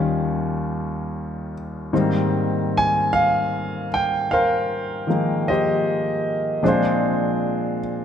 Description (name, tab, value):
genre	jazz ballad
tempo	51 BPM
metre	4/4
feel	swing 69% on 8ths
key	unclear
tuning	A4 = 441 Hz
part	clear grand piano	solo	0.0-8.0 s	Eb2 to Ab5	-19 LUFS	equal	none
room	wet concert hall reverb, RT60 2.1 s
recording	recorded in a church or concert hall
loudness	-19 LUFS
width	side -8 dB against mid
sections	0.0-8.0 A section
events	none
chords	0.0 Eb7; 1.9 Abmaj9; 6.6 Bb9